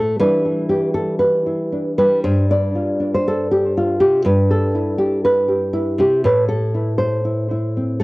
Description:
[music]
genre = folk, solo fingerstyle acoustic guitar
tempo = 120 BPM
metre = 4/4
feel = rubato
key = C major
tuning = A4 = 440 Hz
[part]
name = nylon-string guitar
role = solo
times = 0.0-8.0 s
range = G2 to D5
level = -15 LUFS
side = equal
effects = cassette tape, analog delay
[sound]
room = light reverb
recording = home recording on cassette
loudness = -15 LUFS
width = side -21 dB against mid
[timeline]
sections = 0.0-8.0 A section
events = none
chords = 0.2 Em7; 2.2 G7sus4; 4.3 Cmaj7/G; 6.2 Am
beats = | 0.19 0.68 1.19 1.71 | 2.23 2.75 3.26 3.76 | 4.26 4.76 5.25 5.75 | 6.24 6.74 7.24 7.75

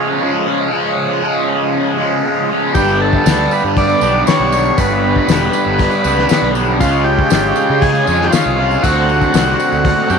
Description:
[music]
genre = psychedelic rock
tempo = 118 BPM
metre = 4/4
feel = straight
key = unclear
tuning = A4 = 440 Hz
[part]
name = hand-pumped harmonium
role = sustained chords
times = 0.0-10.2 s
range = G#3 to B5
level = -22 LUFS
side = right 13 dB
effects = none
[part]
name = cranked stack guitar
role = riff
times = 0.0-10.2 s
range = G2 to F#4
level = -16 LUFS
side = left 1 dB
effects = overdrive, phaser
[part]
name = overdriven combo organ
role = melody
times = 2.7-10.2 s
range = E#4 to D5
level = -16 LUFS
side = left 1 dB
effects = tape echo
[part]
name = fuzz fingered electric bass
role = bass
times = 2.7-10.2 s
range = E1 to C#3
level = -19 LUFS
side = right 1 dB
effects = overdrive
[part]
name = cloth-damped thuddy drum kit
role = drums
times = 2.7-10.0 s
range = hi-hat, kick drum, snare drum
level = -17 LUFS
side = left 4 dB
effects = none
[part]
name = tambourine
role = percussion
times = 2.7-10.2 s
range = none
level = -31 LUFS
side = right 21 dB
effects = none
[sound]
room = moderate spring reverb, RT60 2.4 s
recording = 1960s-style stereo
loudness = -12 LUFS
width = side -6 dB against mid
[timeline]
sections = 0.0-10.2 A section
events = none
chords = 0.0 C#; 2.7 G; 6.8 C#; 8.8 D7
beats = 0.21 | 0.72 1.23 1.73 2.24 | 2.75 3.26 3.76 4.27 | 4.78 5.29 5.79 6.30 | 6.81 7.31 7.82 8.33 | 8.84 9.34 9.85

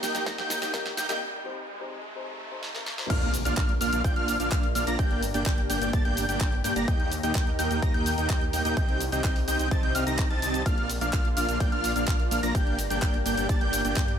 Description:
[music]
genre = EDM, festival progressive house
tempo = 127 BPM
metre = 4/4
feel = straight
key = Bb major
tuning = A4 = 440 Hz
[part]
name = felt-muted upright piano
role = accompaniment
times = 0.0-3.1 s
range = C3 to C5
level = -39 LUFS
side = left 4 dB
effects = sidechain pumping, ping-pong delay
[part]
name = lush unison pad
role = sustained chords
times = 0.0-14.2 s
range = Eb2 to Bb4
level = -35 LUFS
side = equal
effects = chorus, phaser, sidechain pumping
[part]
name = wide unison lead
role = arpeggios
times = 0.0-14.1 s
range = F6 to Bb6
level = -31 LUFS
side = equal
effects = sidechain pumping, ping-pong delay
[part]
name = dense compressed supersaw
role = riff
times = 0.0-14.1 s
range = Bb3 to Bb5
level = -31 LUFS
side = right 1 dB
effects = sidechain pumping, ping-pong delay
[part]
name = pop drum kit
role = drums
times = 0.0-14.2 s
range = crash cymbal, handclaps, hi-hat, ride cymbal, shaker, snare drum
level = -34 LUFS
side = equal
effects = small room ambience
[part]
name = riser and impact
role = sound effects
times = 0.0-5.0 s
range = none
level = -38 LUFS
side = equal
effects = none
[part]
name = electronic kick drum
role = drums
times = 0.3-14.1 s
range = none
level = -26 LUFS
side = equal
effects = small room ambience
[part]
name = wide detuned saw bass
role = bass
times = 3.1-14.2 s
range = G1 to G2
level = -32 LUFS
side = equal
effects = chorus, sidechain pumping
[sound]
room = light reverb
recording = high-pass filter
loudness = -24 LUFS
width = side -8 dB against mid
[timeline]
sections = 0.0-3.1 A section; 3.1-14.2 B section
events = build-up 0.0-3.1; drum fill 0.0-1.2, 2.6-3.1; riser 0.0-3.1; filter sweep on analog synth lead 0.0-3.1; break 1.2-3.1; drop 3.1-14.2; impact 3.1-5.0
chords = 0.0 Eb; 1.2 Cm; 3.1 Bb; 5.0 Gm; 6.9 Eb; 8.8 Cm; 10.7 Bb; 12.5 Gm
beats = 0.27 0.74 | 1.21 1.68 2.15 2.63 | 3.10 3.57 4.04 4.52 | 4.99 5.46 5.93 6.41 | 6.88 7.35 7.83 8.30 | 8.77 9.24 9.71 10.19 | 10.66 11.13 11.60 12.08 | 12.55 13.02 13.49 13.97

